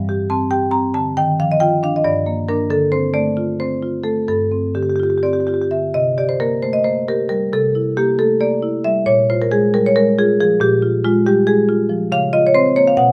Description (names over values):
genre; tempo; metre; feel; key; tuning
classical, contemporary piece for solo marimba; 250-284 BPM (eighths); 7/8; rubato; unclear; A4 = 440 Hz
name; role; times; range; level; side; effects
marimba with medium hard mallets; solo; 0.0-13.1 s; G2 to Bb5; -17 LUFS; equal; none
room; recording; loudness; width
light reverb; none; -17 LUFS; mono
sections
0.0-5.9 A section; 5.9-13.1 B section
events
none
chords
0.0 G7sus4; 1.2 Ebsus2; 2.0 Gm; 2.7 Dm7; 4.3 G9sus4; 5.9 C5; 7.5 Gm6/C; 9.1 Bb5; 12.1 Dbmaj7